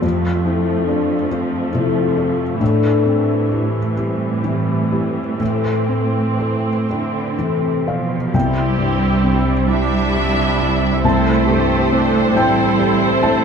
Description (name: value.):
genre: cinematic.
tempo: 40-48 BPM (dotted quarters).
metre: 6/8.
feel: rubato.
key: A minor, C major from 8.3 s.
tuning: A4 = 440 Hz.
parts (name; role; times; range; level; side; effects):
dark French horn; melody; 0.0-7.8 s; A3 to F4; -24 LUFS; right 1 dB; none.
felt-muted upright piano; accompaniment; 0.0-13.4 s; C2 to A5; -21 LUFS; left 2 dB; none.
warm symphonic viola section; accompaniment; 0.0-13.4 s; E3 to G4; -23 LUFS; right 3 dB; none.
concert harp; arpeggios; 0.0-12.2 s; F2 to C5; -25 LUFS; left 11 dB; none.
rich symphonic cello section; bass; 0.0-13.4 s; F2 to A3; -22 LUFS; right 4 dB; none.
warm symphonic violin section; melody; 8.3-13.4 s; E4 to A4; -26 LUFS; left 1 dB; none.
mellow French horn section; sustained chords; 8.3-13.4 s; C4 to E4; -22 LUFS; left 4 dB; none.
clear symphonic double bass section; bass; 8.3-13.4 s; A1 to C2; -22 LUFS; right 4 dB; none.
clear symphonic violin section; second line; 9.7-13.4 s; C5 to E5; -22 LUFS; equal; none.
room: moderate scoring stage reverb, RT60 1.9 s.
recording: none.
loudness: -15 LUFS.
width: side -6 dB against mid.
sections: 0.0-8.3 A section; 8.3-13.4 B section.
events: none.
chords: 0.0 F; 2.6 Am7; 5.4 Am; 8.3 C.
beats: | 0.03 1.31 | 2.60 3.97 | 5.40 6.89 | 8.34 9.70 | 11.04 12.36.